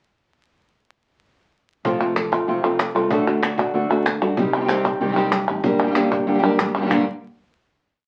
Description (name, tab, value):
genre	flamenco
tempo	190 BPM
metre	4/4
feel	straight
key	G minor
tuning	A4 = 440 Hz
part	nylon-string guitar	accompaniment	1.8-7.0 s	G2 to A4	-25 LUFS	equal	none
part	flamenco guitar	stabs	1.8-7.0 s	G2 to G4	-25 LUFS	equal	none
part	fretless electric bass	bass	1.8-7.0 s	F1 to G2	-32 LUFS	equal	none
part	cajon	percussion	1.8-7.0 s	none	-32 LUFS	equal	none
part	palmas hand claps	percussion	2.0-7.0 s	none	-26 LUFS	equal	none
room	wet small room reverb, RT60 0.5 s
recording	very old 78 rpm record, vinyl crackle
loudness	-20 LUFS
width	mono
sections	1.9-6.9 groove; 6.9-8.1 final chord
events	none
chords	1.9 F; 3.1 D; 4.4 Cm; 5.6 Gm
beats	| 1.85 2.17 2.48 2.80 | 3.11 3.43 3.74 4.06 | 4.38 4.69 5.01 5.32 | 5.64 5.96 6.27 6.59 | 6.90